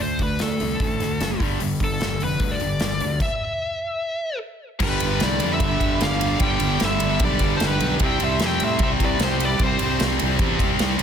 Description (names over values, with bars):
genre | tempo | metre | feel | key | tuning
hard rock | 150 BPM | 4/4 | straight | unclear | A4 = 439 Hz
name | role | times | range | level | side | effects
bluesy overdriven lead guitar | melody | 0.0-10.0 s | A4 to G5 | -26 LUFS | left 2 dB | distortion
high-gain distorted guitar | riff | 0.0-11.0 s | G2 to C4 | -28 LUFS | left 11 dB | distortion
overdriven semi-hollow guitar | riff | 0.0-11.0 s | G2 to C4 | -28 LUFS | right 13 dB | none
fuzz fingered electric bass | bass | 0.0-11.0 s | F1 to A2 | -27 LUFS | equal | overdrive
big rock drum kit | drums | 0.2-11.0 s | crash cymbal, hi-hat, kick drum, ride cymbal, snare drum | -24 LUFS | equal | none
octave-fuzz lead guitar | second line | 4.8-10.0 s | G4 to E5 | -32 LUFS | right 3 dB | distortion, analog delay
percussive tonewheel organ | sustained chords | 4.8-11.0 s | G3 to D5 | -36 LUFS | equal | none
heavy high-gain guitar | riff | 4.8-11.0 s | G2 to C4 | -28 LUFS | equal | distortion
room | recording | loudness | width
light reverb, small room reverb | dense, heavily limited modern master | -19 LUFS | side -8 dB against mid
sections
0.0-4.8 A section; 4.8-11.0 B section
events
stop 3.2-4.8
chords
0.0 D5; 1.4 G5; 3.2 N.C.; 4.8 G; 8.0 C